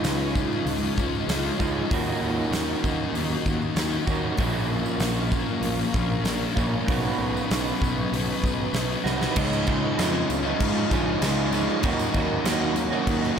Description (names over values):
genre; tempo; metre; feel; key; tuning
rock, shoegaze and dream pop; 97 BPM; 4/4; straight; Db major; A4 = 441 Hz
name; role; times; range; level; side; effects
glassy FM pad; sustained chords; 0.0-13.4 s; F4 to Db6; -33 LUFS; left 1 dB; ensemble chorus, built-in reverb
electric guitar through a small old amp; riff; 0.0-13.4 s; Bb2 to Gb4; -29 LUFS; right 7 dB; reverse reverb
thick fuzz guitar; riff; 0.0-13.4 s; Bb2 to Eb4; -28 LUFS; left 6 dB; distortion, analog chorus
fuzz picked electric bass; bass; 0.0-13.4 s; Bb1 to Ab2; -30 LUFS; equal; overdrive
huge arena drum kit; drums; 0.0-13.3 s; crash cymbal, hi-hat, kick drum, snare drum; -28 LUFS; equal; none
tambourine; percussion; 0.0-13.3 s; none; -44 LUFS; right 10 dB; none
overdriven electric guitar; riff; 9.4-13.4 s; Db3 to Eb4; -30 LUFS; right 1 dB; none
room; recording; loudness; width
moderate cathedral reverb, RT60 4.9 s; dreamy mix soaked in reverb; -22 LUFS; side -7 dB against mid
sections
0.0-9.4 A section; 9.4-13.4 B section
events
drum fill 9.1-9.4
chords
0.0 Dbadd9; 1.9 Ebm7; 4.4 Bbm; 6.9 Cbadd9; 9.4 Dbadd9; 11.8 Ebm7